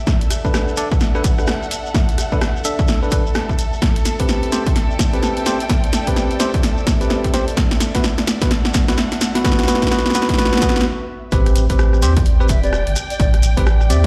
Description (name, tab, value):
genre	UK garage, two-step garage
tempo	128 BPM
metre	4/4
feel	swing 60% on 16ths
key	A dorian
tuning	A4 = 440 Hz
part	ethereal airy pad	sustained chords	0.0-14.1 s	D5 to E5	-36 LUFS	equal	ensemble chorus, built-in reverb, sidechain pumping
part	muted studio string section	texture	0.0-14.1 s	A4 to G5	-32 LUFS	equal	sidechain pumping
part	saturated sub bass	bass	0.1-14.1 s	E1 to E2	-18 LUFS	equal	high-pass filter
part	electronic kick drum	drums	0.1-14.1 s	none	-20 LUFS	equal	overdrive
part	punchy analog drum machine	drums	0.1-14.1 s	hi-hat, rim click, snare drum	-24 LUFS	equal	overdrive
part	shekere	percussion	0.1-14.1 s	none	-33 LUFS	equal	none
part	bell-like tine electric piano	stabs	0.4-14.1 s	B3 to E5	-24 LUFS	equal	low-pass filter, digital delay
part	mellow hollow concert flute	melody	12.5-14.1 s	D5 to E5	-28 LUFS	equal	digital delay
room	light reverb, digital ambience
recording	played on a big sound system in a bare room, large studio reverb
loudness	-17 LUFS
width	mono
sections	0.0-11.3 A section; 11.3-14.1 B section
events	build-up 0.0-11.3; drum fill 0.0-10.9; stop 10.9-11.3; drop 11.3-14.1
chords	0.1 Bm7; 3.8 Am9; 7.6 Bm7; 11.3 Am9